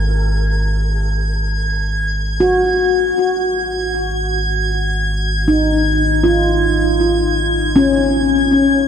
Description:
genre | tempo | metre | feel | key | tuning
ambient | 78 BPM | 4/4 | straight | unclear | A4 = 435 Hz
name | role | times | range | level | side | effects
handpan | arpeggios | 0.0-8.9 s | C#4 to A#4 | -16 LUFS | left 1 dB | tape echo, shimmer reverb
warm sub bass | bass | 0.0-8.9 s | G#1 | -19 LUFS | equal | none
drifting glass-harmonics texture | texture | 0.0-8.9 s | G#6 | -21 LUFS | right 1 dB | chorus, built-in reverb, shimmer reverb
room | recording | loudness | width
wet huge ambient reverb, RT60 7.4 s | in a vast, echoing space, cassette tape | -14 LUFS | side -8 dB against mid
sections
0.0-8.9 A section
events
fade-in on handpan 0.0-8.9; fade-in on synth texture 0.0-8.9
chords
0.0 F#add9/G#; 3.2 G#5

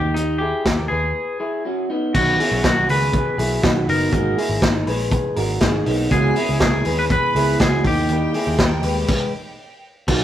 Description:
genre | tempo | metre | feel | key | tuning
jangly indie pop | 121 BPM | 4/4 | straight | unclear | A4 = 440 Hz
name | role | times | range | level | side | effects
twangy electric guitar | melody | 0.0-9.8 s | D#4 to B4 | -23 LUFS | left 1 dB | none
electric guitar through a small old amp | arpeggios | 0.0-10.2 s | G#3 to B4 | -23 LUFS | left 1 dB | none
vintage muted picked electric bass | bass | 0.0-10.2 s | F#1 to D#2 | -24 LUFS | equal | none
vintage drum kit | drums | 0.2-10.2 s | crash cymbal, hi-hat, kick drum, snare drum | -21 LUFS | equal | none
picked steel-string acoustic guitar | accompaniment | 2.1-9.6 s | B2 to G#4 | -26 LUFS | right 3 dB | none
bright studio violin section | second line | 6.1-9.8 s | G5 to B5 | -32 LUFS | equal | none
room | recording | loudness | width
moderate stone room reverb, RT60 1.1 s | rough rehearsal-room recording, warm saturation | -17 LUFS | side -11 dB against mid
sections
0.0-2.1 A section; 2.1-10.1 B section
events
break 1.2-2.1; stop 9.1-10.1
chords
0.0 D#; 1.2 F#sus2; 2.1 Badd9; 4.1 G#sus2; 6.1 C#m7; 7.9 D#

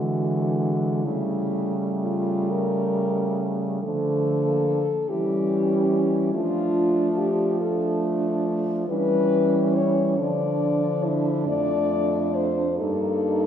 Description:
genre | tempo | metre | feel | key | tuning
classical, lyrical piece for horn quartet | 40-48 BPM (dotted quarters) | 6/8 | rubato | D minor | A4 = 438 Hz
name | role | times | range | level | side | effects
mellow French horn | melody | 0.0-13.5 s | E4 to D5 | -25 LUFS | left 3 dB | none
warm French horn | second line | 0.0-13.5 s | G#3 to Eb4 | -28 LUFS | right 5 dB | none
mellow French horn | accompaniment | 0.0-13.5 s | E3 to Bb3 | -27 LUFS | equal | none
mellow French horn | bass | 0.0-13.5 s | F2 to F3 | -27 LUFS | right 2 dB | none
room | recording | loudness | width
wet scoring stage reverb, RT60 1.9 s | heard from further back in the room | -21 LUFS | side -9 dB against mid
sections
0.0-13.5 A section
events
none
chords
0.0 E7/D; 1.0 A7/C#; 3.8 Dm; 5.1 C#dim/E; 6.3 Dm/F; 8.9 C#dim/E; 10.2 Dm; 11.5 Dm/F; 12.8 Eb/G

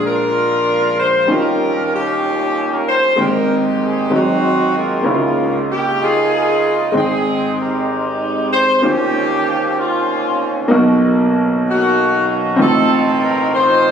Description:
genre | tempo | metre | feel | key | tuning
gospel | 64 BPM (dotted quarters) | 6/8 | straight | Ab major | A4 = 440 Hz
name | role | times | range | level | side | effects
warm horn section | melody | 0.0-13.9 s | Ab3 to C5 | -16 LUFS | equal | none
clear grand piano | accompaniment | 0.0-13.9 s | Ab1 to A5 | -16 LUFS | equal | none
room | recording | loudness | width
moderate concert hall reverb, RT60 1.8 s | recorded on a phone in the room, club reverb, compression | -13 LUFS | side -7 dB against mid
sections
0.0-10.7 A section; 10.7-13.9 B section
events
none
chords
0.0 Bb7; 1.3 Eb9; 3.2 Abmaj9; 4.1 Ab7; 5.1 Db69; 6.9 Abmaj7; 8.8 Eb13; 10.7 Bmaj7; 12.6 F7/A

